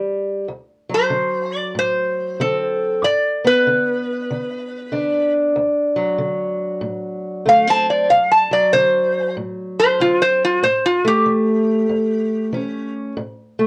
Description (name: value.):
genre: acoustic country blues, solo or duo.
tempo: 95 BPM.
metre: 4/4.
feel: swing 63% on 8ths.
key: D mixolydian.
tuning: A4 = 440 Hz.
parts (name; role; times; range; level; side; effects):
fingerpicked steel-string acoustic guitar; accompaniment; 0.0-13.7 s; D2 to D4; -23 LUFS; equal; none.
metal-body resonator slide guitar; melody; 0.9-12.9 s; F4 to A5; -18 LUFS; equal; none.
room: light reverb.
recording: worn, warbling old tape, cassette tape, warbly pitch drift.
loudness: -18 LUFS.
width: mono.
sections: 0.5-13.7 A section.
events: resonator guitar played with a steel bar solo 0.5-13.7.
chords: 0.5 D7; 3.0 G; 5.6 D7; 10.6 A7.